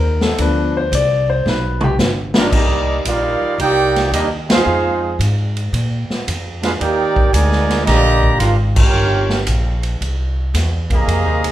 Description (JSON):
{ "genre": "jazz, big band swing", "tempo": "112 BPM", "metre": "4/4", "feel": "swing 67% on 8ths", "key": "C minor", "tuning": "A4 = 441 Hz", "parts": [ { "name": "warm concert grand piano", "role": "accompaniment", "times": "0.0-1.9 s", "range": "F3 to D5", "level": "-18 LUFS", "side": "left 4 dB", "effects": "none" }, { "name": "upright bass", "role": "bass", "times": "0.0-11.5 s", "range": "G1 to Bb2", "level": "-18 LUFS", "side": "equal", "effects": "none" }, { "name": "swinging big-band drum kit", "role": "drums", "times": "0.2-11.5 s", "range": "crash cymbal, hi-hat, kick drum, ride cymbal, snare drum, toms", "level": "-19 LUFS", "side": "equal", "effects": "none" }, { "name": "clear trombone section", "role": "second line", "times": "2.3-11.5 s", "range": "Bb2 to G4", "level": "-21 LUFS", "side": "right 3 dB", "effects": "none" }, { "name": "clear trombone section", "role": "sustained chords", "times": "2.3-2.5 s", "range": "Eb3 to Bb4", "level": "-26 LUFS", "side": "equal", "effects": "none" }, { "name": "clear trumpet section", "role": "melody", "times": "2.4-11.5 s", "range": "Bb3 to Bb5", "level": "-18 LUFS", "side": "right 2 dB", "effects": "none" } ], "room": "moderate large studio reverb, RT60 1.0 s", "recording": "band playing live in one room", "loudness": "-14 LUFS", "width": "side -13 dB against mid", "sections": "0.0-2.5 A section; 2.5-11.5 B section", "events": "grand piano solo 0.0-2.5; drum fill 1.5-2.5; band accent 4.4, 8.7", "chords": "0.4 G7; 2.5 Cm9; 4.7 Fm7; 5.7 Bb5; 6.8 Ebmaj7; 8.9 Gm7b5; 10.0 C7#9" }